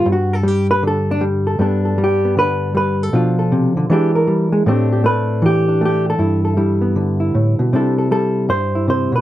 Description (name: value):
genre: solo jazz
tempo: 157 BPM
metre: 4/4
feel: swing 64% on 8ths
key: G major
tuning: A4 = 439 Hz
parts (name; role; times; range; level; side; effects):
- hollow-body jazz guitar; solo; 0.0-9.2 s; G2 to C5; -14 LUFS; equal; none
room: light reverb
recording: rough home demo mix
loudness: -14 LUFS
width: side -14 dB against mid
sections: 0.0-1.6 A section; 1.6-9.2 B section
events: hollow-body jazz guitar solo 0.0-1.6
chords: 0.0 Gadd9; 3.1 Bm7b5; 3.9 E7#11; 4.7 Am11; 6.2 G69; 7.7 C69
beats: | 0.06 0.44 0.82 1.21 | 1.59 1.97 2.36 2.74 | 3.12 3.50 3.89 4.27 | 4.65 5.04 5.42 5.80 | 6.19 6.57 6.95 7.34 | 7.72 8.10 8.48 8.87